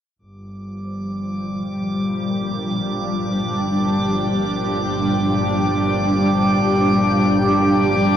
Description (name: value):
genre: ambient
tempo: free time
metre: none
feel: none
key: G minor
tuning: A4 = 440 Hz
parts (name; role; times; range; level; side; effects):
- shimmering ambient pad; sustained chords; 1.1-8.2 s; Bb2 to G4; -20 LUFS; equal; chorus, built-in reverb, shimmer reverb
- rich studio double bass section; bass; 0.2-8.2 s; G1; -29 LUFS; equal; none
- analog drone; drone; 0.5-8.2 s; G3 to D4; -23 LUFS; equal; chorus
- drifting glass-harmonics texture; texture; 0.8-8.2 s; D6; -25 LUFS; right 1 dB; chorus, built-in reverb, shimmer reverb
room: wet booth ambience, RT60 0.2 s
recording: home recording on cassette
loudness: -17 LUFS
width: side -9 dB against mid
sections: 0.2-8.2 A section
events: fade-in on ambient pad 0.2-8.2; fade-in on double bass section 0.2-8.2; fade-in on synth drone 0.2-8.2; fade-in on synth texture 0.2-8.2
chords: 0.2 Gm7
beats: free time